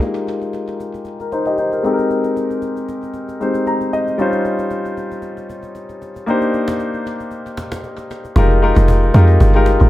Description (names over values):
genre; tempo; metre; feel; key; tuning
amapiano; 115 BPM; 4/4; swing 55% on 16ths; unclear; A4 = 440 Hz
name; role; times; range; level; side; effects
warm grand piano; accompaniment; 0.0-9.9 s; G3 to Bb5; -18 LUFS; left 2 dB; low-pass filter
cajon; drums; 0.0-9.9 s; none; -30 LUFS; equal; tape echo
deep log drum bass; bass; 8.4-9.9 s; F1 to F2; -11 LUFS; equal; none
room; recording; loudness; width
light reverb, studio ambience; echo-heavy mix; -15 LUFS; side -15 dB against mid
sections
0.0-8.4 A section; 8.4-9.9 B section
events
filter sweep on grand piano 0.0-8.4; grand piano fill 3.4-4.2; drop 8.4-9.9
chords
0.0 Fm11; 1.8 Abmaj9; 4.2 Dbmaj9#11; 6.3 Cm9; 8.4 Fm11